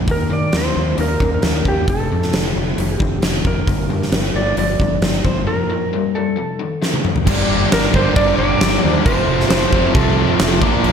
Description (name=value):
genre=classic rock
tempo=134 BPM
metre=4/4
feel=straight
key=G minor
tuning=A4 = 441 Hz
part: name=raw garage guitar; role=riff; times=0.0-10.9 s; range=F2 to D4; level=-22 LUFS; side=left 9 dB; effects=overdrive, slapback echo
part: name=fuzz fingered electric bass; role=bass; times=0.0-10.9 s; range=F1 to Eb3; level=-21 LUFS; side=equal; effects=overdrive
part: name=clean lap steel guitar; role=melody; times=0.1-10.6 s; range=G4 to D5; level=-22 LUFS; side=right 2 dB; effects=slapback echo
part: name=huge arena drum kit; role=drums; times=0.1-10.9 s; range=crash cymbal, hi-hat, kick drum, snare drum, toms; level=-18 LUFS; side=equal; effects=none
part: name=sludgy distorted guitar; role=riff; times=7.3-10.9 s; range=F2 to Bb3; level=-20 LUFS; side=right 10 dB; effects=overdrive, slapback echo
part: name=group handclap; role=percussion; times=7.7-10.5 s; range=none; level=barely audible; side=none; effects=none
room=moderate recital hall reverb, RT60 1.4 s, studio ambience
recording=big arena sound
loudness=-14 LUFS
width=side -7 dB against mid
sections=0.0-7.3 A section; 7.3-10.9 B section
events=drum fill 6.8-7.3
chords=0.1 Eb5; 1.9 F; 3.7 Gm; 5.5 Bb5; 6.4 F; 7.3 Gm; 9.1 F